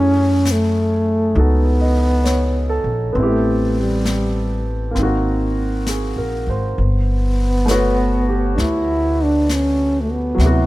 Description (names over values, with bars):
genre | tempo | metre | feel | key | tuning
jazz ballad | 66 BPM | 4/4 | swing 66% on 8ths | unclear | A4 = 440 Hz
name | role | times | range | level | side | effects
dark trombone | melody | 0.0-10.7 s | G3 to E4 | -19 LUFS | equal | none
warm grand piano | accompaniment | 0.0-10.7 s | C3 to D#5 | -22 LUFS | right 1 dB | none
upright bass | bass | 0.0-10.7 s | G1 to F#2 | -19 LUFS | equal | none
jazz brush drum kit | drums | 0.5-10.7 s | brushed snare drum, hi-hat, snare drum | -30 LUFS | left 3 dB | none
room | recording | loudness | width
little or no reverb | none | -15 LUFS | side -17 dB against mid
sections
0.0-10.7 A section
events
none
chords
0.0 F#m7; 3.2 Am9; 5.0 G#9; 6.8 Gmaj9#11